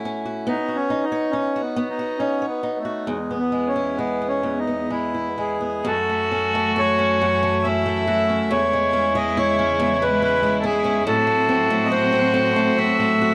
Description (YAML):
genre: celtic folk, Celtic slow air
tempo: 63-72 BPM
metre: 3/4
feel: rubato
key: E major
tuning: A4 = 440 Hz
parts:
  - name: picked swing-style acoustic guitar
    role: accompaniment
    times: 0.0-13.3 s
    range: E2 to C#5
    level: -26 LUFS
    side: equal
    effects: none
  - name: accordion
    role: melody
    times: 0.5-13.3 s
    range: G#3 to E5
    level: -24 LUFS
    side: equal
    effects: none
  - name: clear fiddle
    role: second line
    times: 5.8-13.3 s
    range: E4 to F#4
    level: -28 LUFS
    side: equal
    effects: none
  - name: bright studio string section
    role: sustained chords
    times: 5.8-13.3 s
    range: E2 to C4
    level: -29 LUFS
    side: equal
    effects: none
room: moderate spring reverb, RT60 1.2 s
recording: dark, warm production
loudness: -21 LUFS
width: mono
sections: 0.0-5.8 A section; 5.8-13.3 B section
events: none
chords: 0.5 Badd9; 3.1 E; 5.8 F#m7; 8.5 E6; 11.1 Am6